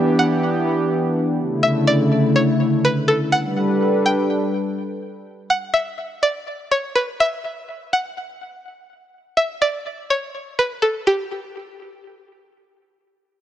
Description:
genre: hip hop, atmospheric cloud-rap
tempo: 124 BPM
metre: 4/4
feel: half-time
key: G lydian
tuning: A4 = 439 Hz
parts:
  - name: string-like resonator pluck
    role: melody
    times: 0.0-12.5 s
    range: G4 to G5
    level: -20 LUFS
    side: equal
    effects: chorus, low-pass filter, tape echo
  - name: warm analog pad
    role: sustained chords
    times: 0.0-5.2 s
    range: C#3 to B4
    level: -18 LUFS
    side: equal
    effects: chorus
room: light reverb, digital ambience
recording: dry, gritty hardware recording, cassette tape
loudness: -17 LUFS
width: side -11 dB against mid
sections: 0.0-11.1 A section; 11.1-13.4 B section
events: none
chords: 0.0 Em9; 1.4 Dsus2; 3.3 Gmaj9; 7.2 N.C.

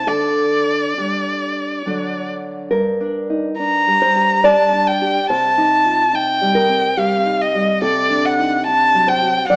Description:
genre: romantic duo for violin and classical guitar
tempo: 70 BPM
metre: 3/4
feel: uneven beats, rubato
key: G minor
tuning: A4 = 440 Hz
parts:
  - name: rich violin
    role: melody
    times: 0.0-9.6 s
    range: D5 to Bb5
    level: -15 LUFS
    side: equal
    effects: none
  - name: nylon-string guitar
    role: accompaniment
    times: 0.0-9.6 s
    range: G2 to D5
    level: -18 LUFS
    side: equal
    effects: none
room: moderate recital hall reverb, RT60 1.8 s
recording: small speaker sound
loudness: -14 LUFS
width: side -29 dB against mid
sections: 0.0-2.7 A section; 2.7-9.6 B section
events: none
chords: 0.1 Dsus4; 1.9 D; 2.7 Gm; 5.3 Cm; 7.8 D7/C

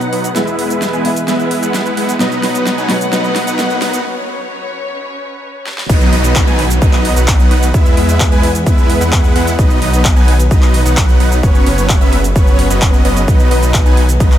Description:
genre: EDM, festival progressive house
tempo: 130 BPM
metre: 4/4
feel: straight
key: B major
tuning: A4 = 442 Hz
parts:
  - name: dark grand piano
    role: accompaniment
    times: 0.0-4.1 s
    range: B2 to E5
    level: -21 LUFS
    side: left 1 dB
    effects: sidechain pumping, ping-pong delay
  - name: warm studio string section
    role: sustained chords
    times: 0.0-14.4 s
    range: E2 to F#5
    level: -22 LUFS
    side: left 1 dB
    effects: sidechain pumping
  - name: supersaw chords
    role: riff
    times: 0.0-14.4 s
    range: F#3 to G#5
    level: -16 LUFS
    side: right 1 dB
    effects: sidechain pumping, low-pass filter, ping-pong delay
  - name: big-room dance drum kit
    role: drums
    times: 0.0-14.4 s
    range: crash cymbal, handclaps, hi-hat, shaker, snare drum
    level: -20 LUFS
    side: equal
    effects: none
  - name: riser and downlifter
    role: sound effects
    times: 0.6-9.6 s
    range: none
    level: -26 LUFS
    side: equal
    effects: none
  - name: wide detuned saw bass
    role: bass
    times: 5.9-14.4 s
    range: F#1 to E2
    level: -15 LUFS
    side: equal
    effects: chorus, sidechain pumping
  - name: electronic kick drum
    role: drums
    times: 5.9-14.3 s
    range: none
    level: -11 LUFS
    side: equal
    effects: none
room: little or no reverb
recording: high-pass filter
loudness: -10 LUFS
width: side -11 dB against mid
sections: 0.0-5.9 A section; 5.9-14.4 B section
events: build-up 0.0-5.9; drum fill 0.0-4.0, 5.7; filter sweep on supersaw synth 0.0-5.9; filter sweep 0.0-5.9; break 4.0-5.9; drop 5.9-14.4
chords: 0.4 E; 2.2 B; 4.0 F#sus4; 5.9 B; 7.7 E; 9.6 B; 11.4 F#sus4; 13.3 B

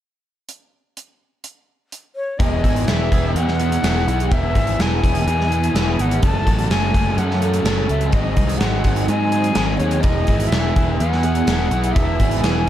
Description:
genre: rock, shoegaze and dream pop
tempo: 126 BPM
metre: 4/4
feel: straight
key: E major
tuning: A4 = 440 Hz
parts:
  - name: gated 80s drum kit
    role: drums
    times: 0.5-12.5 s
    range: hi-hat, kick drum, snare drum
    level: -20 LUFS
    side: equal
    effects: none
  - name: breathy bright jazz flute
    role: melody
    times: 2.2-12.7 s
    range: C#5 to A5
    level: -25 LUFS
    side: left 3 dB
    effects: slapback echo
  - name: overdriven electric guitar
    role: riff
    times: 2.4-12.7 s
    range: E2 to A4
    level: -22 LUFS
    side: right 1 dB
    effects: lush chorus
  - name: growling picked electric bass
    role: bass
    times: 2.4-12.6 s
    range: E1 to G#2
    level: -20 LUFS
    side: equal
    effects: overdrive
room: studio reverb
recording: dark, warm production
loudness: -16 LUFS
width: side -12 dB against mid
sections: 0.5-2.4 A section; 2.4-12.7 B section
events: none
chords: 0.5 N.C.; 2.4 E; 6.2 F#m; 8.1 G#7; 10.0 E

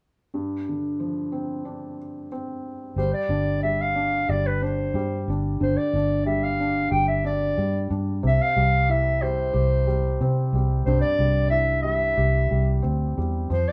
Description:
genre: folk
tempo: 91 BPM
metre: 4/4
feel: straight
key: C major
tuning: A4 = 439 Hz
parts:
  - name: felt-muted upright piano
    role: accompaniment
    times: 0.3-13.7 s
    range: G2 to G4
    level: -31 LUFS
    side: equal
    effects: none
  - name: mellow clarinet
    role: melody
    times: 3.0-13.7 s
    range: B4 to G5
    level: -26 LUFS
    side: equal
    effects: none
  - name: vintage muted fingered electric bass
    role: bass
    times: 3.0-13.7 s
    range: G1 to C3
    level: -26 LUFS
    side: equal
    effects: none
room: moderate studio reverb, RT60 0.8 s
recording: band playing live in one room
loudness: -23 LUFS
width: mono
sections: 0.3-3.0 A section; 3.0-13.7 B section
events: none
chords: 0.3 G7sus4; 3.0 G5; 8.2 C

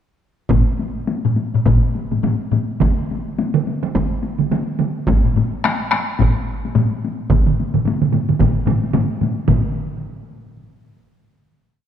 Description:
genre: japanese traditional, taiko drum ensemble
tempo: 107 BPM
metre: 4/4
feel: swing 60% on 16ths, uneven beats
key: none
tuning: none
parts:
  - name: solo taiko drums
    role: percussion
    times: 0.5-9.7 s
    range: none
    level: -24 LUFS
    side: left 4 dB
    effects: none
  - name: taiko ensemble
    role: percussion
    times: 0.5-10.0 s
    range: none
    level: -19 LUFS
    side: left 3 dB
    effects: none
  - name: taiko ensemble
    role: percussion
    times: 0.5-9.7 s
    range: none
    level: -20 LUFS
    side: right 1 dB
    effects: none
  - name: taiko ensemble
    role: percussion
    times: 2.8-10.0 s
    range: none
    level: -20 LUFS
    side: right 7 dB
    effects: none
room: moderate concert hall reverb, RT60 2.3 s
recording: none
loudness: -16 LUFS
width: side -9 dB against mid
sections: 0.5-9.5 A section; 9.5-11.6 final hit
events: speeding up 0.5-11.6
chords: none

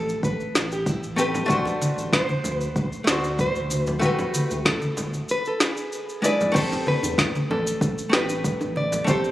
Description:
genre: sunset chillout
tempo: 95 BPM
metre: 4/4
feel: straight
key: A dorian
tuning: A4 = 442 Hz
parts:
  - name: nylon-string guitar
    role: melody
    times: 0.0-9.3 s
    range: E4 to D5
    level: -28 LUFS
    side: equal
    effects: ping-pong delay
  - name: archtop guitar, miked and amplified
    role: accompaniment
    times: 0.0-9.3 s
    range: G#3 to C5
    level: -26 LUFS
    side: left 1 dB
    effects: auto-pan, ping-pong delay
  - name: round analog bass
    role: bass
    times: 0.0-9.2 s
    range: G1 to E2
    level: -30 LUFS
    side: equal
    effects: none
  - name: smooth R&B drum kit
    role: drums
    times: 0.1-9.3 s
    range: crash cymbal, shaker, snare drum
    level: -25 LUFS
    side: equal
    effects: small room ambience
  - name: electronic kick drum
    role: drums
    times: 0.2-9.2 s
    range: none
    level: -26 LUFS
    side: equal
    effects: small room ambience
  - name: congas and bongos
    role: percussion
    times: 1.3-9.2 s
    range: none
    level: -29 LUFS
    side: equal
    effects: none
room: moderate lush hall reverb, RT60 2.5 s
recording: recorded on a phone in the room, club reverb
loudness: -21 LUFS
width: side -15 dB against mid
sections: 0.0-6.6 A section; 6.6-9.3 B section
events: none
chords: 0.0 Am9; 1.5 D7; 4.0 Gmaj9; 5.3 E7; 6.6 Am9

